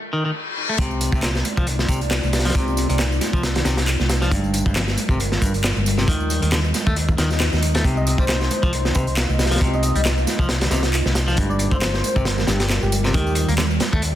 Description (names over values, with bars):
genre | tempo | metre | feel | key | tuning
breakbeat, breaks | 136 BPM | 4/4 | swing 56% on 16ths | C minor | A4 = 440 Hz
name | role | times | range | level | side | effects
reverse cymbal | sound effects | 0.1-0.8 s | none | -27 LUFS | left 6 dB | none
clean electric guitar | riff | 0.1-14.0 s | F2 to Bb3 | -26 LUFS | equal | low-pass filter, dub echo
dark analog pad | sustained chords | 1.3-14.2 s | G3 to Eb5 | -28 LUFS | equal | chorus, phaser, sidechain pumping
hollow-body short-scale fingered electric bass | bass | 0.8-14.2 s | G1 to Eb2 | -22 LUFS | equal | none
crunchy breakbeat drum kit | drums | 0.8-14.1 s | hi-hat, kick drum, snare drum | -22 LUFS | equal | none
electronic tambourine and handclaps | drums | 0.8-14.1 s | none | -29 LUFS | right 1 dB | overdrive
congas | percussion | 0.8-13.9 s | none | -32 LUFS | right 5 dB | none
airy dreamy lead | melody | 8.0-13.3 s | G4 to Eb5 | -28 LUFS | left 1 dB | chorus, AM radio sound, dub echo
room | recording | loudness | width
light reverb, small room ambience | dense, heavily limited modern master | -17 LUFS | side -12 dB against mid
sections
0.8-14.2 A section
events
break 0.0-0.8; reverse cymbal 0.1-0.8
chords
0.0 N.C.; 0.8 Cm11; 4.3 Gm7; 6.1 Eb; 7.8 Cm7; 11.4 Gm7; 13.1 Ebmaj7